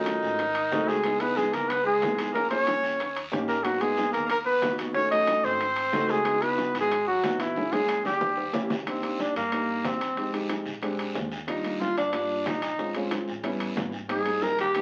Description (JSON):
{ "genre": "Afro-Cuban jazz", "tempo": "184 BPM", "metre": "4/4", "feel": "straight", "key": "G# minor, C minor from 8.9 s", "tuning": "A4 = 440 Hz", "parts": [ { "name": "warm trumpet", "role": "melody", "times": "0.0-8.7 s", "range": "D#4 to D#5", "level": "-27 LUFS", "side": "equal", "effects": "none" }, { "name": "growling tenor saxophone", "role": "second line", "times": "0.0-14.8 s", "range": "D#3 to Bb4", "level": "-33 LUFS", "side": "equal", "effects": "none" }, { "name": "dark concert grand piano", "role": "accompaniment", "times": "0.0-14.8 s", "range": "F#3 to A#4", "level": "-34 LUFS", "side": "equal", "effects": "none" }, { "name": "upright bass", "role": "bass", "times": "0.0-14.8 s", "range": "G#1 to G2", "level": "-49 LUFS", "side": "equal", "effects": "none" }, { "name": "bongos", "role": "percussion", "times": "0.1-14.8 s", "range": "none", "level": "-39 LUFS", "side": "equal", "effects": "none" }, { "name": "guiro", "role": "percussion", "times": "0.1-14.8 s", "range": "none", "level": "-43 LUFS", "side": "equal", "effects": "none" }, { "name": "timbales", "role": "percussion", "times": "0.1-14.8 s", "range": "none", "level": "-40 LUFS", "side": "equal", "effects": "none" } ], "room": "wet club reverb, RT60 0.6 s", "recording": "very old 78 rpm record, vinyl crackle", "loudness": "-27 LUFS", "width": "mono", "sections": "0.0-8.9 A section; 8.9-14.8 B section", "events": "drum fill 7.6-8.9; tenor saxophone solo 8.9-14.8", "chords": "0.4 G#7b9; 1.0 C#m9; 2.3 A#m7b5; 3.0 D#7; 3.7 G#m9; 5.0 D#m7b5; 5.6 G#7b9; 6.3 C#m11; 7.6 A#m7b5; 8.2 D#7b9; 8.9 Cm9; 10.2 Fm9; 10.8 Bb13; 11.5 Ebmaj9; 12.8 Bbm9; 13.4 A9; 14.1 Abmaj9" }